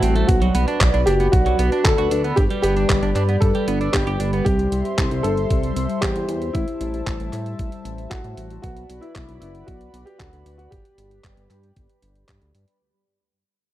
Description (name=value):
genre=italo disco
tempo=115 BPM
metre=4/4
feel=straight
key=unclear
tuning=A4 = 440 Hz
part: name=warm baby grand piano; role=melody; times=0.0-12.2 s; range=E4 to A4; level=-24 LUFS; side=equal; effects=tape echo
part: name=warm analog pad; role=sustained chords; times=0.0-12.8 s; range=G3 to C6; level=-26 LUFS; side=left 2 dB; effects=chorus
part: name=twelve-string electric guitar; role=arpeggios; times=0.0-4.4 s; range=F#3 to G4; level=-27 LUFS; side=right 4 dB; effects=tape echo
part: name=chorused synth bass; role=bass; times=0.0-12.7 s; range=F#1 to A2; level=-23 LUFS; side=equal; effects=none
part: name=detuned 8-bit digital drum machine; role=drums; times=0.0-12.8 s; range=handclaps, hi-hat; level=-26 LUFS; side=equal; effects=studio reverb
part: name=electronic kick drum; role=drums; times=0.3-12.4 s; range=none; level=-21 LUFS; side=equal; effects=studio reverb
room=digital ambience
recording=dry, close 1970s-style studio recording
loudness=-17 LUFS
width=side -14 dB against mid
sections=0.0-12.8 A section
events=fade-out 0.0-12.8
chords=0.3 Bm; 2.4 G; 4.5 C; 6.5 Am7; 8.6 Bm; 10.7 G